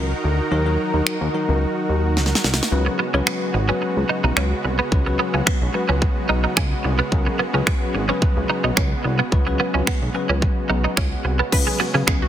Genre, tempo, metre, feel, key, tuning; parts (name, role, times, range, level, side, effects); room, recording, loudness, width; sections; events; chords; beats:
dance-pop; 109 BPM; 4/4; straight; A4 = 439 Hz
bell-like tine electric piano; accompaniment; 0.0-12.2 s; Gb3 to Cb5; -26 LUFS; left 4 dB; sidechain pumping
supersaw pad; sustained chords; 0.0-12.3 s; Db3 to Bb4; -26 LUFS; right 1 dB; sidechain pumping
chorused synth bass; bass; 0.0-12.2 s; Ab1 to Db3; -21 LUFS; equal; sidechain pumping
pop drum kit; drums; 1.1-12.2 s; crash cymbal, finger snaps, kick drum, snare drum; -20 LUFS; equal; soft clipping on snare
twelve-string electric guitar; riff; 2.9-12.2 s; Cb4 to Eb4; -24 LUFS; right 4 dB; ensemble chorus
wide unison pluck; arpeggios; 11.5-12.3 s; Gb4 to Cb5; -27 LUFS; right 2 dB; sidechain pumping, tape echo
light reverb, digital ambience; dense, heavily limited modern master; -18 LUFS; side -11 dB against mid
0.0-11.5 A section
drum fill 2.2-2.7
0.0 Ebm; 2.7 Db7sus4
| 0.52 1.06 1.62 2.17 | 2.72 3.27 3.82 4.37 | 4.92 5.47 6.02 6.57 | 7.12 7.67 8.22 8.77 | 9.32 9.87 10.42 10.97 | 11.52 12.07